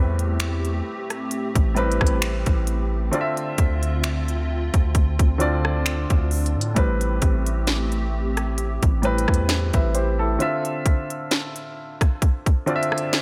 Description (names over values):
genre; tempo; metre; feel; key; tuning
contemporary R&B; 66 BPM; 4/4; swing 54% on 16ths; A minor; A4 = 441 Hz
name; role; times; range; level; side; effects
dark baby grand piano; accompaniment; 0.0-13.2 s; A2 to E5; -28 LUFS; equal; none
hollow soft pad; sustained chords; 0.0-10.4 s; D3 to E5; -34 LUFS; equal; ensemble chorus, sidechain pumping
long sustained 808-style bass; bass; 0.0-10.4 s; A1 to A2; -26 LUFS; equal; none
trap drum kit; drums; 0.2-13.2 s; finger snaps, hi-hat, kick drum, rim click, snare drum; -24 LUFS; equal; none
room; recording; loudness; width
digital ambience; none; -22 LUFS; mono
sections
0.0-13.2 A section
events
none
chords
0.0 Am9; 3.1 Dm9; 6.8 Am9; 10.4 Dm9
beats
0.40 1.31 2.22 | 3.13 4.04 4.95 5.86 | 6.76 7.67 8.58 9.49 | 10.40 11.31 12.22 13.13